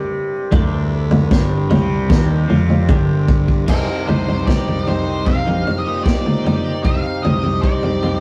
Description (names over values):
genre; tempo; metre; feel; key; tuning
psychedelic rock; 76 BPM; 4/4; straight; C minor; A4 = 440 Hz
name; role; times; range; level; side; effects
hand-pumped harmonium; sustained chords; 0.0-8.2 s; G3 to G5; -28 LUFS; equal; none
tanpura; drone; 0.0-8.2 s; C2 to C3; -33 LUFS; equal; none
twelve-string electric guitar; riff; 0.5-8.2 s; G2 to G4; -26 LUFS; equal; rotary speaker
fuzz fingered electric bass; bass; 0.5-8.2 s; G1 to C3; -23 LUFS; equal; overdrive
vintage drum kit; drums; 0.5-8.2 s; crash cymbal, kick drum, snare drum, toms; -20 LUFS; equal; none
octave-fuzz lead guitar; melody; 3.7-8.2 s; Bb4 to F5; -27 LUFS; equal; distortion
room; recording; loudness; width
moderate studio reverb, RT60 0.6 s; rough rehearsal-room recording, vinyl crackle; -17 LUFS; mono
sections
0.0-3.7 A section; 3.7-8.2 B section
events
drum fill 2.1-3.7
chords
0.0 G5; 0.5 D5; 1.3 G5; 3.7 Cm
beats
| 0.52 1.31 2.10 2.88 | 3.67 4.47 5.26 6.05 | 6.84 7.63